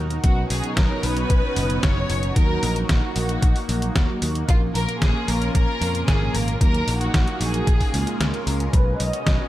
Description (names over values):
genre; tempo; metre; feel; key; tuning
italo disco; 113 BPM; 4/4; straight; Eb minor; A4 = 440 Hz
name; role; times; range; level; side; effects
lush unison pad; sustained chords; 0.0-9.5 s; Ab3 to C#5; -29 LUFS; equal; chorus, phaser, shimmer reverb
mellow synth brass; stabs; 0.0-9.5 s; Bb2 to B4; -30 LUFS; right 2 dB; chorus, shimmer reverb
picked electric bass; bass; 0.0-9.4 s; F#1 to F2; -25 LUFS; equal; none
detuned 8-bit digital drum machine; drums; 0.1-9.4 s; hi-hat, snare drum; -27 LUFS; equal; gated reverb
dark symphonic violin section; melody; 0.2-9.5 s; F4 to D#5; -28 LUFS; equal; low-pass filter, tape echo, shimmer reverb
electronic kick drum; drums; 0.2-9.4 s; none; -19 LUFS; equal; none
room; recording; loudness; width
light reverb; none; -19 LUFS; side -14 dB against mid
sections
0.0-8.7 A section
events
break 8.2-8.7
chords
0.2 Badd9; 2.4 Ebm; 4.5 Bbm; 6.6 Ebm; 7.7 Bbm7; 8.7 Badd9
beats
| 0.24 0.77 1.30 1.83 | 2.36 2.89 3.42 3.96 | 4.49 5.02 5.55 6.08 | 6.61 7.14 7.67 8.20 | 8.73 9.27